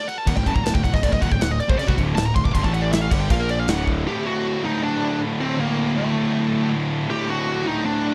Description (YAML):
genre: heavy metal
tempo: 158 BPM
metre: 4/4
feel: straight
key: unclear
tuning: A4 = 441 Hz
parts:
  - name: high-gain lead guitar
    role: melody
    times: 0.0-8.1 s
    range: A3 to D6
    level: -27 LUFS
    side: equal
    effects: distortion, delay
  - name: modern studio drum kit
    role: drums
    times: 0.1-4.0 s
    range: crash cymbal, kick drum, snare drum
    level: -24 LUFS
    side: equal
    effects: none
  - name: heavy high-gain guitar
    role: riff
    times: 0.3-8.1 s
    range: D2 to Bb3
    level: -32 LUFS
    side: equal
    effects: distortion
  - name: sludgy distorted guitar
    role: riff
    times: 0.3-8.1 s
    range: D2 to Bb3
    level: -30 LUFS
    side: equal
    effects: overdrive
  - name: thick fuzz guitar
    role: riff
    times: 0.3-8.1 s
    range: D2 to Bb3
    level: -30 LUFS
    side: equal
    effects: distortion
  - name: fuzz fingered electric bass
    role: bass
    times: 0.3-4.0 s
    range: D1 to C2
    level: -28 LUFS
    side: equal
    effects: overdrive
room: light reverb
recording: dark, warm production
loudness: -21 LUFS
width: mono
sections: 0.0-4.1 A section; 4.1-8.1 B section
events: lead electric guitar solo 0.0-4.1; drum fill 3.9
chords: 0.0 D; 2.6 A5; 3.1 D; 3.3 Bb5; 3.7 D; 4.1 D5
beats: 0.27 0.65 | 1.03 1.41 1.79 2.17 | 2.55 2.93 3.31 3.68 | 4.06 4.44 4.82 5.20 | 5.58 5.96 6.34 6.72 | 7.10 7.48 7.86